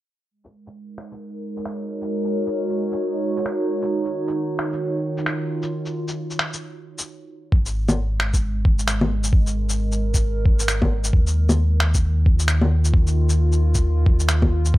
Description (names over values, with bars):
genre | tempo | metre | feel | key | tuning
future garage | 133 BPM | 4/4 | swing 61% on 16ths | unclear | A4 = 439 Hz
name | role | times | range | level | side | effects
warbly tape-like pad | sustained chords | 0.8-14.8 s | Db3 to Db5 | -26 LUFS | right 1 dB | chorus, built-in reverb, sidechain pumping
electronic shaker, finger snaps and bongos | drums | 0.4-14.7 s | none | -24 LUFS | left 1 dB | overdrive
warm sub bass | bass | 7.5-14.8 s | Ab1 to Eb2 | -20 LUFS | equal | sidechain pumping
electronic kick drum | drums | 7.5-14.8 s | none | -17 LUFS | equal | overdrive
room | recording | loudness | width
little or no reverb | dry, gritty hardware recording, low-pass filter | -18 LUFS | side -17 dB against mid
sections
0.3-7.5 A section; 7.5-14.8 B section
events
filter sweep 0.3-7.5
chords
0.3 Ab9sus4; 3.9 Ebm7; 7.5 Absus2; 11.1 Eb5